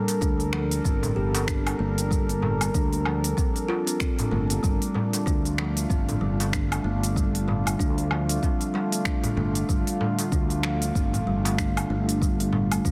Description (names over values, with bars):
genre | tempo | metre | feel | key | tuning
organic downtempo | 95 BPM | 4/4 | swing 58% on 16ths | unclear | A4 = 440 Hz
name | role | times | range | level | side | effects
warbly tape-like pad | sustained chords | 0.0-12.9 s | D3 to Bb4 | -33 LUFS | equal | chorus, built-in reverb, tremolo, vintage 12-bit sampler grit, sidechain pumping
kalimba | arpeggios | 0.0-12.9 s | F3 to G4 | -31 LUFS | equal | vintage 12-bit sampler grit, delay
organic electronic drum kit | drums | 0.1-12.9 s | cabasa, finger snaps, hi-hat, woodblock | -34 LUFS | equal | soft clipping on snare
darbuka | percussion | 0.1-12.8 s | none | -34 LUFS | equal | none
fretless electric bass | bass | 0.2-12.9 s | G1 to D2 | -30 LUFS | equal | sidechain pumping
electronic kick drum | drums | 0.2-12.9 s | none | -29 LUFS | equal | none
room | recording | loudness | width
little or no reverb | dense, heavily limited modern master | -25 LUFS | mono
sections
0.0-12.9 A section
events
none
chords
0.0 Gm; 4.6 Dm/G